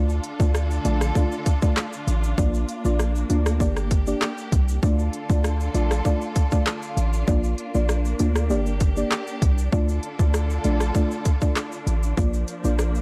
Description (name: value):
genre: dancehall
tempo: 98 BPM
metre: 4/4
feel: straight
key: D minor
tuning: A4 = 440 Hz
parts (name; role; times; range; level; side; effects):
- deep mellow chord stab; accompaniment; 0.0-13.0 s; A3 to D5; -30 LUFS; equal; chorus
- warm studio string section; sustained chords; 0.0-13.0 s; D3 to A4; -34 LUFS; equal; sidechain pumping
- hard-hitting 808-style bass; bass; 0.0-13.0 s; G1 to D2; -25 LUFS; equal; none
- island pop drum kit; drums; 0.1-13.0 s; handclaps, hi-hat, kick drum, rim click, shaker; -25 LUFS; equal; overdrive
- egg shaker; percussion; 0.1-13.0 s; none; -47 LUFS; equal; none
room: digital ambience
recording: dark, warm production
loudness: -23 LUFS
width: mono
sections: 0.0-13.0 A section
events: none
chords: 0.0 Dm; 2.4 Bb; 3.6 Gm; 4.8 Dm; 7.3 Bb; 8.5 Gm; 9.7 Dm; 12.2 Bb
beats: 0.54 1.15 1.77 | 2.38 2.99 3.60 4.21 | 4.83 5.44 6.05 6.66 | 7.28 7.89 8.50 9.11 | 9.73 10.34 10.95 11.56 | 12.18 12.79